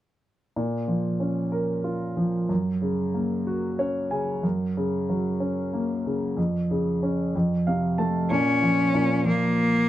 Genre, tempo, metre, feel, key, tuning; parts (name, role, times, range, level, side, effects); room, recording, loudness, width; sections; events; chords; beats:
pop; 62 BPM (dotted quarters); 6/8; straight; Bb minor; A4 = 440 Hz
warm grand piano; accompaniment; 0.6-9.9 s; F2 to A5; -24 LUFS; equal
bright cello; melody; 8.3-9.9 s; Bb3 to Db4; -21 LUFS; left 1 dB; plate reverb
moderate studio reverb, RT60 0.6 s; dark, warm production; -23 LUFS; side -13 dB against mid
0.6-8.3 A section; 8.3-9.9 B section
grand piano fill 3.5-4.4, 7.3-8.3
0.6 Bbm; 2.5 Gb; 6.4 Db/F; 7.3 F; 8.3 Bbm
| 0.56 1.53 | 2.50 3.47 | 4.44 5.41 | 6.37 7.34 | 8.31 9.28